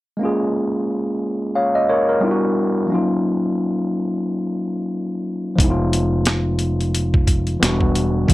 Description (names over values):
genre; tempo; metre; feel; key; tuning
R&B, neo-soul; 89 BPM; 4/4; swing 58% on 16ths; Eb minor; A4 = 441 Hz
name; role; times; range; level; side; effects
overdriven tine electric piano; accompaniment; 0.2-8.3 s; Eb3 to F5; -19 LUFS; equal; none
fingered electric bass; bass; 5.6-8.3 s; E1 to Eb2; -21 LUFS; equal; none
boom bap sampler-style drum kit; drums; 5.6-8.3 s; hi-hat, kick drum, snare drum; -18 LUFS; equal; none
room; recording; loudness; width
light reverb; none; -17 LUFS; side -18 dB against mid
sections
0.2-8.3 A section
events
none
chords
0.2 Bbm7; 2.2 Em9; 2.9 Ebm9; 5.6 Fm7b5; 7.6 Em9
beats
| 0.19 0.87 1.54 2.21 | 2.89 3.56 4.24 4.91 | 5.58 6.26 6.93 7.61 | 8.28